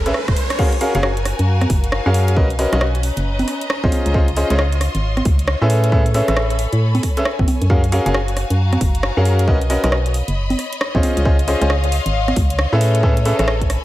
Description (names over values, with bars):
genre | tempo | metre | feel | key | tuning
UK garage, two-step garage | 135 BPM | 4/4 | swing 62% on 16ths | unclear | A4 = 445 Hz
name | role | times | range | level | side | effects
organ-like FM bass | bass | 0.0-13.8 s | E1 to A2 | -18 LUFS | equal | none
riser | sound effects | 0.0-0.6 s | none | -26 LUFS | right 2 dB | none
bright studio string section | texture | 0.0-13.8 s | C#4 to B#5 | -26 LUFS | left 2 dB | sidechain pumping
bright concert grand piano | stabs | 0.1-13.5 s | C#4 to E#5 | -20 LUFS | equal | digital delay
house drum kit | drums | 0.1-13.8 s | congas, crash cymbal, hi-hat, rim click | -23 LUFS | right 1 dB | overdrive
electronic kick drum | drums | 0.3-13.7 s | none | -18 LUFS | equal | overdrive
room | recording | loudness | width
light reverb, digital ambience | none | -15 LUFS | side -15 dB against mid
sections
0.6-13.8 A section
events
drum fill 0.0-0.6; riser 0.0-0.6; band accent 0.5; drop 0.6-13.8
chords
0.0 Amaj9; 0.6 F#maj9; 2.4 Bmaj9; 3.9 C#maj9; 5.7 Amaj9; 7.7 F#maj9; 9.5 Bmaj9; 11.0 C#maj9; 12.8 Amaj9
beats
0.14 | 0.59 1.03 1.48 1.92 | 2.37 2.81 3.25 3.70 | 4.14 4.59 5.03 5.48 | 5.92 6.37 6.81 7.25 | 7.70 8.14 8.59 9.03 | 9.48 9.92 10.37 10.81 | 11.25 11.70 12.14 12.59 | 13.03 13.48